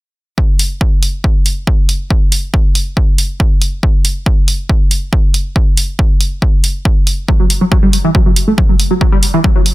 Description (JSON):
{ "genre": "driving peak-time techno", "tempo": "139 BPM", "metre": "4/4", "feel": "straight", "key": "F# phrygian", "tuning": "A4 = 440 Hz", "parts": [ { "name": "electronic kick drum", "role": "drums", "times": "0.4-9.5 s", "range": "none", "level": "-11 LUFS", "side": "equal", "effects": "overdrive" }, { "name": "electronic hi-hat", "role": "drums", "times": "0.6-9.7 s", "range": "none", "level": "-17 LUFS", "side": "right 2 dB", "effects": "overdrive, sidechain pumping on hats" }, { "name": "tight sequenced synth", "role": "riff", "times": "7.3-9.6 s", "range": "E3 to A3", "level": "-14 LUFS", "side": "equal", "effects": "chorus, cassette tape, sidechain pumping, ping-pong delay" } ], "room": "little or no reverb", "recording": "dense, heavily limited modern master", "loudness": "-10 LUFS", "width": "side -18 dB against mid", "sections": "0.4-9.7 A section", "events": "none", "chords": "none" }